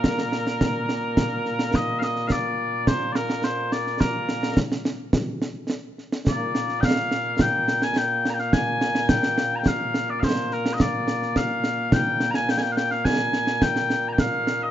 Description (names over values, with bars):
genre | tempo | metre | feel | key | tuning
scottish traditional, Scottish pipe music | 106 BPM | 4/4 | straight | Bb mixolydian | A4 = 444 Hz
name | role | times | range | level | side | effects
mellow small bagpipes | melody | 0.0-14.7 s | Bb2 to Bb5 | -23 LUFS | left 1 dB | none
concert snare drum and concert bass drum | drums | 0.0-14.6 s | none | -23 LUFS | right 1 dB | none
room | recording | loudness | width
light reverb, small room ambience | rough home demo mix, nothing above 7.5 kHz | -21 LUFS | side -11 dB against mid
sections
0.0-1.7 A section; 1.7-14.7 A section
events
none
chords
none